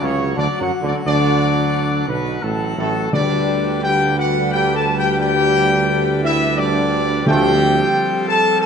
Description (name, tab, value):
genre	classical, ceremonial fanfare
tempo	87 BPM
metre	3/4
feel	straight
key	unclear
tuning	A4 = 438 Hz
part	dark trumpet section	melody	0.0-8.7 s	A4 to A5	-20 LUFS	left 1 dB	none
part	dark French horn section	sustained chords	0.0-8.7 s	A3 to A4	-21 LUFS	left 5 dB	none
part	dark trombone section	sustained chords	0.0-7.5 s	A2 to A3	-24 LUFS	right 4 dB	none
part	pipe organ, full organ	sustained chords	0.0-8.7 s	D3 to F#5	-25 LUFS	left 1 dB	none
part	mellow tuba	bass	0.0-7.8 s	A1 to F#2	-22 LUFS	right 5 dB	none
part	timpani	percussion	3.1-4.1, 7.3-8.2 s	D3	-24 LUFS	equal	none
room	wet recital hall reverb, RT60 1.3 s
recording	none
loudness	-15 LUFS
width	side -7 dB against mid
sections	0.0-8.7 A section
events	none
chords	0.0 D; 3.1 G/D; 7.3 Fadd9/D